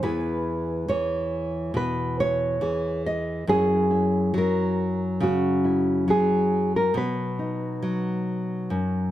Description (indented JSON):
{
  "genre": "folk, solo fingerstyle acoustic guitar",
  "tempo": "69 BPM",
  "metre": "4/4",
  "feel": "straight",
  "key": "E major",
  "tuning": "A4 = 441 Hz",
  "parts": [
    { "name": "nylon-string guitar", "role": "solo", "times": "0.0-9.1 s", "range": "E2 to D#5", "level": "-22 LUFS", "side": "equal", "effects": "none" }
  ],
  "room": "light reverb",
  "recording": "dark, warm production",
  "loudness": "-22 LUFS",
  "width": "side -13 dB against mid",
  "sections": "0.0-9.1 A section",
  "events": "none",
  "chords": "0.0 E; 3.5 F#7; 7.0 B"
}